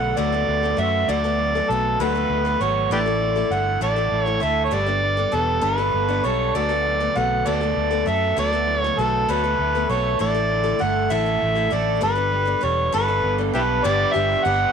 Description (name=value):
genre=rock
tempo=66 BPM (dotted quarters)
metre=6/8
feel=straight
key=D major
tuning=A4 = 440 Hz
part: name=overdriven harmonica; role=melody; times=0.0-14.7 s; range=E4 to F#5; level=-21 LUFS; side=right 1 dB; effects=none
part: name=picked acoustic archtop guitar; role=accompaniment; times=0.0-14.7 s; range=G2 to A4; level=-26 LUFS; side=left 11 dB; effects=none
part: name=crunchy overdriven guitar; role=riff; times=0.0-14.7 s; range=G2 to A4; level=-27 LUFS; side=right 13 dB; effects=none
part: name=fingered electric bass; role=bass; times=0.0-14.6 s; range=E1 to F#2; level=-26 LUFS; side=equal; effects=none
room=light reverb, studio ambience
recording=1960s-style stereo with parts hard left and right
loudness=-18 LUFS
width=side -7 dB against mid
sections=0.0-13.8 A section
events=none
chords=0.0 D6; 2.9 Asus4; 4.7 Gadd9; 6.5 D6; 10.2 Asus4; 12.0 Gadd9; 13.8 G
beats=0.17 | 1.08 1.99 | 2.90 3.81 | 4.72 5.63 | 6.55 7.46 | 8.37 9.28 | 10.19 11.10 | 12.01 12.93 | 13.83